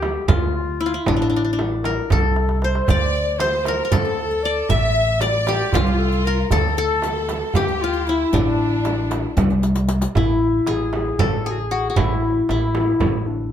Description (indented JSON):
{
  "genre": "Turkish makam ensemble",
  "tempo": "231 BPM (eighths)",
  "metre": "7/8",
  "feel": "straight",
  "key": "D makam nihavent",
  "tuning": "A4 = 440 Hz",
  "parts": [
    { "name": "qanun", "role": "melody", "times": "0.0-13.5 s", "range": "D4 to E5", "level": "-22 LUFS", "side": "left 2 dB", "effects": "none" },
    { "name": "mellow clarinet", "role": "second line", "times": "0.0-13.5 s", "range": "D4 to E5", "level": "-26 LUFS", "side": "left 7 dB", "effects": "none" },
    { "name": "upright bass", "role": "bass", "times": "0.0-13.5 s", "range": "A1 to D2", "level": "-22 LUFS", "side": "equal", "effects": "none" },
    { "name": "darbuka", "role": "percussion", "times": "0.0-13.3 s", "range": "none", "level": "-26 LUFS", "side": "right 4 dB", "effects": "none" },
    { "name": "frame drum", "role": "percussion", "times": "0.0-13.1 s", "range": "none", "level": "-26 LUFS", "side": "right 4 dB", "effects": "none" },
    { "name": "warm studio violin section", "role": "second line", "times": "2.9-9.6 s", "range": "D4 to E5", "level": "-26 LUFS", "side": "right 2 dB", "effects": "none" },
    { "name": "riq", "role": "percussion", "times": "2.9-10.1 s", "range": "none", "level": "-32 LUFS", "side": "left 5 dB", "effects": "none" }
  ],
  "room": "little or no reverb",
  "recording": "close, detailed microphones",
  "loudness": "-17 LUFS",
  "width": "side -9 dB against mid",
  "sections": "0.0-10.1 A section; 10.1-13.5 B section",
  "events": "drum fill 2.4-2.9, 9.6-10.1",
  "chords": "none"
}